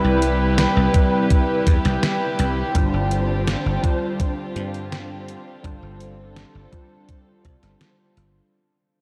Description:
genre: vaporwave.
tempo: 83 BPM.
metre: 4/4.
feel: straight.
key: unclear.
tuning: A4 = 439 Hz.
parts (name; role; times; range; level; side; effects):
warbly lo-fi synth keys; accompaniment; 0.0-8.6 s; G3 to C5; -26 LUFS; equal; ensemble chorus, tape echo.
dark studio string section; sustained chords; 0.0-8.5 s; C3 to B4; -28 LUFS; equal; none.
dry thumbed slap bass; bass; 0.0-8.4 s; G1 to G2; -25 LUFS; equal; none.
detuned 8-bit digital drum machine; drums; 0.2-8.3 s; hi-hat, snare drum; -30 LUFS; equal; studio reverb.
electronic kick drum; drums; 0.9-7.6 s; none; -21 LUFS; equal; studio reverb.
room: wet cathedral reverb, RT60 5.9 s.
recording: dreamy mix soaked in reverb, cassette tape.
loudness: -20 LUFS.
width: mono.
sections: 0.0-8.5 A section.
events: fade-out 0.0-8.5.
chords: 0.0 Cmaj7; 2.8 G7sus4.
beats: 0.58 1.30 2.03 | 2.75 3.47 4.20 4.92 | 5.64 6.36 7.09 7.81.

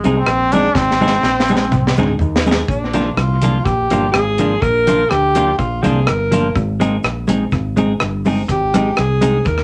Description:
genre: ska.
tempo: 124 BPM.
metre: 4/4.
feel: straight.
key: Bb mixolydian.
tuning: A4 = 438 Hz.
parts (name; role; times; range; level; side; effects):
brilliant trombone; melody; 0.0-2.2 s; Ab3 to D4; -19 LUFS; equal; none.
clean electric guitar; accompaniment; 0.0-9.4 s; F3 to Ab4; -20 LUFS; equal; tape echo.
fingered electric bass; bass; 0.0-9.6 s; G1 to Eb2; -22 LUFS; equal; none.
deep reggae drum kit; drums; 0.0-9.6 s; hi-hat, kick drum, rim click, snare drum, toms; -23 LUFS; equal; tape echo.
cabasa; percussion; 0.0-9.6 s; none; -49 LUFS; equal; none.
clear alto saxophone; melody; 2.7-9.6 s; D4 to Bb4; -20 LUFS; equal; none.
room: wet club reverb, RT60 0.6 s.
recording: none.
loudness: -16 LUFS.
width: mono.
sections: 0.0-2.7 A section; 2.7-9.6 B section.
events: drum fill 0.8-2.7; alto saxophone solo 2.7-9.6.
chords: 0.0 Ab; 2.7 Bb; 6.6 Ab.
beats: 0.27 | 0.75 1.24 1.72 2.21 | 2.69 3.18 3.66 4.14 | 4.63 5.11 5.60 6.08 | 6.56 7.05 7.53 8.01 | 8.50 8.98 9.46.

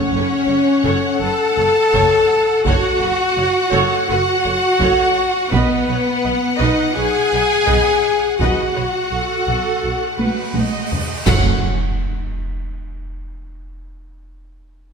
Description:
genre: cinematic, epic orchestral film score.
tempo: 84 BPM.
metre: 4/4.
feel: straight.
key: F# dorian.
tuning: A4 = 440 Hz.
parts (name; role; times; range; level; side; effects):
clear symphonic violin section; melody; 0.0-11.7 s; F#5; -25 LUFS; left 3 dB; none.
rich symphonic violin section; second line; 0.0-11.7 s; B4 to A5; -22 LUFS; equal; none.
rich chamber viola section; accompaniment; 0.0-11.7 s; C#4 to D#5; -25 LUFS; right 3 dB; none.
mellow French horn section; sustained chords; 0.0-11.6 s; B3 to A4; -19 LUFS; left 3 dB; none.
rich symphonic cello section; bass; 0.0-11.7 s; F#3 to A4; -22 LUFS; right 2 dB; none.
timpani; percussion; 0.0-0.8, 11.3-11.6 s; F#2; -28 LUFS; right 2 dB; none.
clear studio double bass section; bass; 0.1-11.7 s; F#1 to B1; -24 LUFS; right 5 dB; none.
taiko ensemble; drums; 1.9-12.7 s; none; -23 LUFS; right 1 dB; none.
cymbal swell, clash cymbals and concert bass drum; percussion; 8.4-12.7 s; none; -26 LUFS; right 1 dB; none.
cymbal swell and impact; sound effects; 10.1-14.1 s; none; -31 LUFS; right 1 dB; none.
room: wet scoring stage reverb, RT60 1.8 s.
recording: none.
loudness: -14 LUFS.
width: side -5 dB against mid.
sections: 0.0-11.3 A section; 11.3-14.1 B section.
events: cymbal swell 10.1-11.3; drum fill 10.2-11.3; band accent 11.3-12.0; impact 11.3-14.1.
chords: 0.0 F#m; 5.5 B; 11.3 F#m.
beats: 0.50 1.22 1.94 | 2.65 3.37 4.09 4.80 | 5.52 6.24 6.96 7.68 | 8.39 9.11 9.83 10.55 | 11.27 11.99 12.71 13.43.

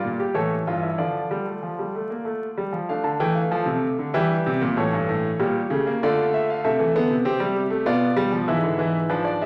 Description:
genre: classical, baroque-style 4-part fugue for grand piano.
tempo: 96 BPM.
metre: 3/4.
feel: straight.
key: D minor.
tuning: A4 = 440 Hz.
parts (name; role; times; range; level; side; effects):
clear concert grand piano; solo; 0.0-9.5 s; G2 to A5; -23 LUFS; equal; none.
room: wet recital hall reverb, RT60 1.5 s.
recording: vinyl crackle.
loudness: -23 LUFS.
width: mono.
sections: 0.0-2.9 A section; 2.9-9.5 B section.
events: none.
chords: 0.4 A; 1.0 Dm; 4.2 Edim; 4.8 A7; 6.0 Dm; 6.6 Am/C; 7.9 Bdim; 8.5 E7/G#.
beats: 0.35 | 0.99 1.63 2.27 | 2.91 3.53 4.16 | 4.78 5.40 6.02 | 6.64 7.26 7.88 | 8.49 9.11.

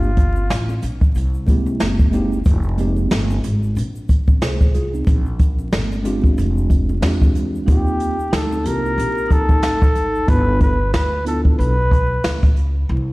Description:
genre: hip hop, jazz-hop.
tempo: 92 BPM.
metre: 4/4.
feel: swing 57% on 16ths.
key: unclear.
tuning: A4 = 441 Hz.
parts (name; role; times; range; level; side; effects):
breathy flugelhorn; melody; 0.0-0.8, 7.7-12.5 s; F4 to B4; -22 LUFS; equal; none.
tine electric piano; accompaniment; 0.0-11.7 s; Ab3 to C5; -23 LUFS; right 1 dB; medium stereo tremolo.
upright bass; bass; 0.0-13.1 s; F1 to E2; -21 LUFS; equal; none.
egg shaker and congas; percussion; 0.0-10.3 s; none; -34 LUFS; left 3 dB; none.
jazz brush drum kit; drums; 0.2-12.7 s; hi-hat, kick drum, snare drum; -17 LUFS; equal; none.
vibraphone with soft mallets; second line; 7.7-10.3 s; Eb4 to G4; -27 LUFS; left 1 dB; none.
room: studio reverb.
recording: played on a big sound system in a bare room, stone room reverb, vinyl crackle.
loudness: -15 LUFS.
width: side -20 dB against mid.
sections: 0.0-13.1 A section.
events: none.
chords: 0.0 Gm9; 1.2 C7b13; 2.5 Fm11; 5.1 Bb13; 7.7 Eb6; 10.3 G13.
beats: 0.50 1.16 1.81 | 2.46 3.11 3.76 4.42 | 5.07 5.72 6.37 7.02 | 7.68 8.33 8.98 9.63 | 10.29 10.94 11.59 12.24 | 12.89.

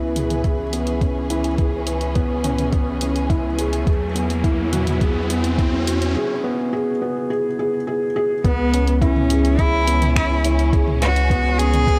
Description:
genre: piano and strings electronica.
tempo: 105 BPM.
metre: 4/4.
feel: straight.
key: C# minor.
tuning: A4 = 439 Hz.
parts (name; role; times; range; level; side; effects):
dark symphonic string section; sustained chords; 0.0-12.0 s; E3 to B4; -31 LUFS; equal; sidechain pumping.
felt-muted upright piano; riff; 0.0-12.0 s; B3 to B4; -25 LUFS; equal; delay.
round analog bass; bass; 0.0-12.0 s; C#2 to E2; -25 LUFS; equal; sidechain pumping.
riser; sound effects; 2.9-6.2 s; none; -33 LUFS; equal; none.
deep house drum kit; drums; 0.2-12.0 s; finger snaps, hi-hat, toms; -30 LUFS; equal; none.
electronic kick drum; drums; 0.4-12.0 s; none; -22 LUFS; equal; none.
warm cello; melody; 8.4-12.0 s; B3 to G#4; -23 LUFS; equal; none.
room: light reverb, digital ambience.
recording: none.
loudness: -20 LUFS.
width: mono.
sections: 0.0-8.4 A section; 8.4-12.0 B section.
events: build-up 0.0-8.4; riser 2.9-6.2; break 6.2-8.4; drop 8.4-12.0.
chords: 0.0 C#m7; 3.9 Eadd9; 8.4 C#m7.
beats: 0.45 1.02 | 1.59 2.16 2.73 3.31 | 3.88 4.45 5.02 5.59 | 6.16 6.73 7.30 7.88 | 8.45 9.02 9.59 10.16 | 10.73 11.30 11.88.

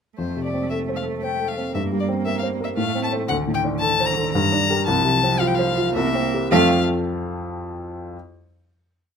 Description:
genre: quick classical-period movement for piano trio.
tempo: 114 BPM.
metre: 3/4.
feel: rubato.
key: F major.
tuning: A4 = 441 Hz.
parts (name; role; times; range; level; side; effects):
warm violin; melody; 0.2-6.8 s; C5 to Bb5; -23 LUFS; left 6 dB; none.
rich cello; second line; 0.2-6.8 s; D3 to Bb3; -28 LUFS; right 8 dB; none.
warm baby grand piano; accompaniment; 0.2-8.2 s; C2 to F5; -22 LUFS; equal; none.
room: moderate studio reverb, RT60 0.8 s.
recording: none.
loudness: -19 LUFS.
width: side -7 dB against mid.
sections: 0.2-6.5 A section; 6.5-8.1 final chord.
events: none.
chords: 0.2 F; 1.7 C5/G; 2.8 F/A; 3.3 D5; 4.3 Gm; 4.9 F/C; 5.9 C7; 6.5 F.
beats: | 0.18 0.71 1.23 | 1.74 2.26 2.77 | 3.29 3.81 4.33 | 4.86 5.40 5.95 | 6.51 7.05 7.60.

